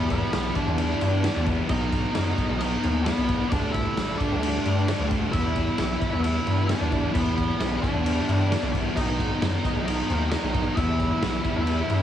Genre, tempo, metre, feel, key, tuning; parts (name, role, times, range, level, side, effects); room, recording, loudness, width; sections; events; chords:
quiet-loud alternative rock; 132 BPM; 4/4; straight; E minor; A4 = 435 Hz
octave-fuzz lead guitar; melody; 0.0-12.0 s; B3 to E5; -29 LUFS; right 1 dB; distortion, plate reverb
fuzz guitar; riff; 0.0-12.0 s; B2 to E4; -28 LUFS; left 1 dB; distortion
gritty driven synth bass; bass; 0.0-12.0 s; A1 to G2; -26 LUFS; equal
raw garage drum kit; drums; 0.1-12.0 s; crash cymbal, kick drum, snare drum; -28 LUFS; equal
light reverb; heavily compressed radio sound; -22 LUFS; side -10 dB against mid
0.0-12.0 A section
0.0 Em7; 1.7 B; 3.5 Dsus4; 5.3 Em7; 9.0 B; 10.8 Em